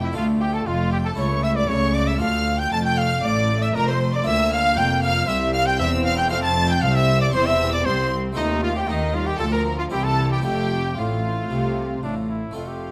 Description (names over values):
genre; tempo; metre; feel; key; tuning
classical, baroque-style concerto movement with solo episodes; 116 BPM; 4/4; straight; D minor, F major from 4.3 s; A4 = 440 Hz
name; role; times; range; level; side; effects
bright trumpet; melody; 0.0-12.9 s; D4 to A5; -28 LUFS; equal; none
rich chamber violin section; melody; 0.0-12.9 s; Eb5 to A6; -32 LUFS; equal; none
rich studio violin section; second line; 0.0-12.9 s; Eb4 to A5; -30 LUFS; equal; none
harpsichord; accompaniment; 0.0-12.9 s; C2 to C5; -33 LUFS; equal; none
rich chamber viola section; accompaniment; 0.0-12.9 s; E3 to C4; -31 LUFS; equal; none
rich chamber cello section; bass; 0.0-12.9 s; C2 to Eb3; -28 LUFS; equal; none
rich chamber double bass section; bass; 0.0-12.9 s; E1 to Eb2; -29 LUFS; equal; none
room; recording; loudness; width
moderate recital hall reverb, RT60 1.2 s; none; -21 LUFS; mono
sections
0.0-12.6 A section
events
none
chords
0.2 Dm; 1.2 A/C#; 2.2 Dm; 4.3 Bb/D; 5.3 C; 6.3 F; 7.3 C/E; 8.4 F7/Eb; 9.4 Bb/D; 9.9 C; 10.5 F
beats
| 0.15 0.67 1.18 1.70 | 2.21 2.72 3.24 3.75 | 4.26 4.78 5.29 5.80 | 6.32 6.83 7.35 7.86 | 8.38 8.89 9.41 9.93 | 10.46 10.99 11.51 12.03 | 12.56